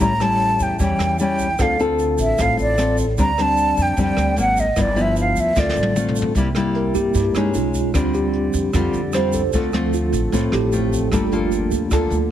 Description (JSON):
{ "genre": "bossa nova", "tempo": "151 BPM", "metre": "4/4", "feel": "straight", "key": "D minor", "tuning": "A4 = 440 Hz", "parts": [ { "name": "breathy mellow silver concert flute", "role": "melody", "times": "0.0-6.2 s", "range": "D5 to Bb5", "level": "-20 LUFS", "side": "right 1 dB", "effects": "none" }, { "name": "nylon-string guitar", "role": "accompaniment", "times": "0.0-12.3 s", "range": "G2 to A4", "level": "-21 LUFS", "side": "left 3 dB", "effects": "none" }, { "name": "upright bass", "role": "bass", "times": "0.0-12.3 s", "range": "G1 to G2", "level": "-24 LUFS", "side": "equal", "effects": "none" }, { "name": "jazz brush drum kit", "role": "drums", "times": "0.0-12.2 s", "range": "hi-hat, kick drum, rim click, snare drum, toms", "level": "-26 LUFS", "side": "equal", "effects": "none" }, { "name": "tube shaker", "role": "percussion", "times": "0.0-12.3 s", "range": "none", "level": "-36 LUFS", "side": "right 6 dB", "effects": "none" }, { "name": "tine electric piano", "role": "accompaniment", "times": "6.8-12.3 s", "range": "F3 to C5", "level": "-22 LUFS", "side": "right 3 dB", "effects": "medium stereo tremolo" } ], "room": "light reverb", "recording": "heavily compressed radio sound, multiband compression", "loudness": "-16 LUFS", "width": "side -11 dB against mid", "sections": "0.0-6.4 A section; 6.4-12.3 B section", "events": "drum fill 5.6-6.4; tine electric piano solo 6.4-12.3", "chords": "0.0 A7; 1.6 Dm7; 3.2 Bbmaj13/D (rootless); 4.4 G#9; 4.8 G6; 5.6 Dm7; 6.4 C7; 7.5 B69; 7.9 Fsus2/D; 9.5 Dm7; 11.1 Gm9", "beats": "| 0.00 0.40 0.80 1.19 | 1.59 1.99 2.38 2.78 | 3.18 3.58 3.97 4.37 | 4.77 5.16 5.56 5.96 | 6.35 6.75 7.15 7.54 | 7.94 8.34 8.73 9.13 | 9.53 9.93 10.32 10.72 | 11.11 11.51 11.91 12.30" }